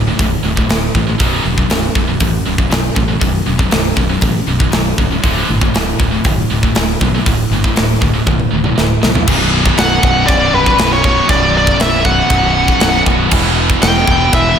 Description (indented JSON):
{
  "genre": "heavy metal",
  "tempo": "119 BPM",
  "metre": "4/4",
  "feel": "straight",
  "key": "B minor",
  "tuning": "A4 = 440 Hz",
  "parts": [
    { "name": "scooped high-gain guitar", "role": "riff", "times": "0.0-14.6 s", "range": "B1 to E3", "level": "-19 LUFS", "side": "left 10 dB", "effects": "distortion" },
    { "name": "scooped high-gain guitar", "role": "riff", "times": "0.0-14.6 s", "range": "B1 to E3", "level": "-18 LUFS", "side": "right 8 dB", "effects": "distortion" },
    { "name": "overdriven fingered electric bass", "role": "bass", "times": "0.0-14.5 s", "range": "B0 to B1", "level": "-18 LUFS", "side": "equal", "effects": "none" },
    { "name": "tight metal drum kit", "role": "drums", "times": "0.2-14.4 s", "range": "china cymbal, crash cymbal, hi-hat, kick drum, snare drum, toms", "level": "-15 LUFS", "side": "equal", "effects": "none" },
    { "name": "high-gain lead guitar", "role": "melody", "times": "9.8-14.6 s", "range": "B4 to G5", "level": "-14 LUFS", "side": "equal", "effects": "distortion, slapback echo" }
  ],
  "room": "moderate lush hall reverb, RT60 2.0 s",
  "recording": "big arena sound",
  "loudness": "-11 LUFS",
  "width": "side -8 dB against mid",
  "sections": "0.0-9.3 A section; 9.3-14.6 B section",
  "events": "drum fill 8.3-9.3",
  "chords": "0.0 D5; 1.2 B5; 5.2 D5; 9.3 B5; 13.3 Em"
}